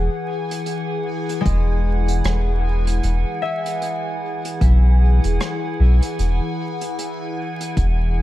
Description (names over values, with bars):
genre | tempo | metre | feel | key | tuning
ambient dub | 76 BPM | 4/4 | swing 59% on 16ths | unclear | A4 = 436 Hz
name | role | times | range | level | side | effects
warbly tape-like pad | sustained chords | 0.0-8.2 s | E3 to F#5 | -26 LUFS | left 2 dB | chorus, built-in reverb, phaser
soft dub sub bass | bass | 0.0-8.2 s | E1 to B1 | -16 LUFS | equal | none
bubbling stepped-filter texture | texture | 0.0-8.2 s | G#5 | -33 LUFS | right 7 dB | chorus, built-in reverb
vintage brush drum kit | drums | 0.5-8.0 s | hi-hat, rim click | -32 LUFS | right 2 dB | dub echo
concert harp | arpeggios | 1.4-6.3 s | G#3 to E5 | -30 LUFS | left 4 dB | dub echo
electronic kick drum | drums | 1.5-8.0 s | none | -22 LUFS | equal | none
room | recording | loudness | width
studio reverb | dark, warm production, vinyl crackle | -18 LUFS | side -15 dB against mid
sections
0.0-8.2 A section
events
none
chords
0.0 F#sus2/E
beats
0.67 1.46 2.25 | 3.04 3.82 4.61 5.40 | 6.19 6.98 7.77